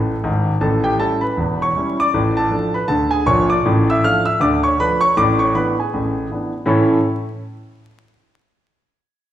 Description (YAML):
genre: jazz, stride piano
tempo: 158 BPM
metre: 4/4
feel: swing 60% on 8ths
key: A major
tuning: A4 = 440 Hz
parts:
  - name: clear grand piano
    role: solo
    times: 0.0-7.0 s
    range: E1 to F6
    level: -15 LUFS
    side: equal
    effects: none
room: wet recital hall reverb, RT60 1.3 s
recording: recorded in a church or concert hall, vinyl crackle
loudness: -15 LUFS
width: side -11 dB against mid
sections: 0.6-6.7 A section; 6.7-8.2 B section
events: grand piano fill 0.0-0.6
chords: 0.0 A5; 0.6 A7; 2.1 Dm/A; 5.2 E7/A; 6.7 A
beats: 0.22 | 0.60 0.98 1.36 1.74 | 2.12 2.50 2.88 3.26 | 3.64 4.02 4.40 4.78 | 5.16 5.54 5.92 6.30 | 6.68